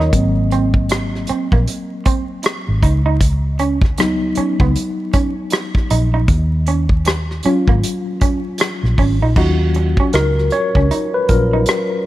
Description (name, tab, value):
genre	R&B, neo-soul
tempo	78 BPM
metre	4/4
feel	swing 61% on 16ths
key	Eb minor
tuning	A4 = 443 Hz
part	electric guitar through a small old amp	second line	0.0-11.7 s	Bb3 to Eb4	-23 LUFS	right 5 dB	wide subtle chorus
part	tine electric piano	accompaniment	0.0-12.1 s	Gb3 to Eb5	-20 LUFS	left 2 dB	overdrive, fast stereo tremolo
part	vintage muted fingered electric bass	bass	0.0-11.6 s	Ab1 to Eb2	-16 LUFS	equal	none
part	unplugged drum kit	drums	0.0-11.9 s	crash cymbal, hi-hat, kick drum, rim click	-17 LUFS	equal	none
room	light reverb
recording	vinyl crackle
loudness	-14 LUFS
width	side -15 dB against mid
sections	0.0-9.4 A section; 9.4-12.1 B section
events	tine electric piano solo 0.0-9.4, 9.4-12.1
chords	0.1 Ab9; 2.8 Db9sus4; 6.3 Ebm7